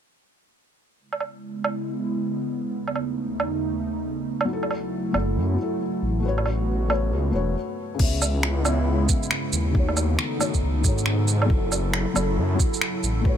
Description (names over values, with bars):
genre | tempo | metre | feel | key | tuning
future garage | 137 BPM | 4/4 | swing 63% on 16ths | C# minor | A4 = 440 Hz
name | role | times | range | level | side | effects
airy breathy pad | sustained chords | 1.0-13.4 s | D#2 to A4 | -28 LUFS | right 1 dB | chorus, sidechain pumping
organic electronic drum kit | drums | 1.1-13.1 s | crash cymbal, finger snaps, shaker, woodblock | -26 LUFS | right 3 dB | none
felt-muted upright piano | accompaniment | 4.4-13.4 s | C#3 to E5 | -29 LUFS | left 4 dB | sidechain pumping, low-pass filter, ping-pong delay
swelling detuned saw bass | bass | 5.1-13.4 s | E1 to G#2 | -23 LUFS | equal | sidechain pumping
electronic kick drum | drums | 8.0-13.4 s | none | -22 LUFS | equal | none
room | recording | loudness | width
little or no reverb | none | -22 LUFS | side -9 dB against mid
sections
1.0-8.0 A section; 8.0-13.4 B section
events
filter sweep on analog synth pad 1.0-8.0; stop 7.6-8.0; filter sweep on felt piano 8.0-13.4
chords
1.0 C#m7; 2.7 B9/D#; 4.5 F#m7; 6.2 A69; 8.0 C#m7; 9.7 B9/D#; 11.5 F#m7